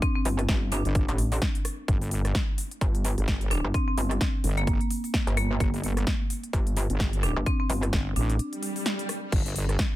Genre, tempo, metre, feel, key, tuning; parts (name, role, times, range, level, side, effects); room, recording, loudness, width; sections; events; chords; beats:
bass house; 129 BPM; 4/4; swing 57% on 16ths; G minor; A4 = 443 Hz
marimba with hard mallets; melody; 0.0-8.6 s; Bb3 to D4; -33 LUFS; equal; ping-pong delay
big-room dance drum kit; drums; 0.0-9.9 s; crash cymbal, hi-hat, rim click, snare drum; -33 LUFS; equal; overdrive
electronic kick drum; drums; 0.0-9.9 s; -27 LUFS; equal; overdrive
pulsing pluck wobble bass; bass; 0.3-7.9 s; G1 to A1; -27 LUFS; equal; chorus, tube saturation, sidechain pumping
wobble bass; bass; 0.9-9.8 s; G1 to A1; -27 LUFS; equal; chorus, overdrive, sidechain pumping
swell; sound effects; 8.5-9.3 s; -34 LUFS; equal
little or no reverb; -24 LUFS; side -15 dB against mid
0.0-10.0 A section
break 8.4-9.3; swell 8.5-9.3
| 0.02 0.49 0.95 1.42 | 1.88 2.35 2.81 3.28 | 3.74 4.21 4.67 5.14 | 5.60 6.07 6.53 7.00 | 7.46 7.93 8.39 8.86 | 9.32 9.79